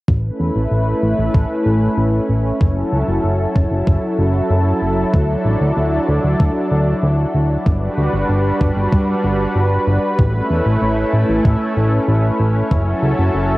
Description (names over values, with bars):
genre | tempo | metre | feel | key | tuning
synthwave | 95 BPM | 4/4 | straight | A major | A4 = 439 Hz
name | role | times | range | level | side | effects
lush unison pad | sustained chords | 0.1-13.6 s | F#3 to B4 | -18 LUFS | equal | chorus, sidechain pumping, cassette tape
fat analog bass | bass | 0.1-13.6 s | F#1 to G2 | -17 LUFS | equal | none
electronic kick drum | drums | 0.1-12.8 s | none | -16 LUFS | equal | cassette tape
room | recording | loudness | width
light reverb | home recording on cassette, nothing above 10.5 kHz | -14 LUFS | side -19 dB against mid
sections
0.1-13.6 A section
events
filter sweep on analog synth bass 0.1-13.6; filter sweep on analog synth pad 0.1-13.6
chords
0.1 Aadd9; 2.6 F#m7; 5.1 Dadd9; 7.7 Gmaj7; 10.2 Aadd9; 12.7 F#m7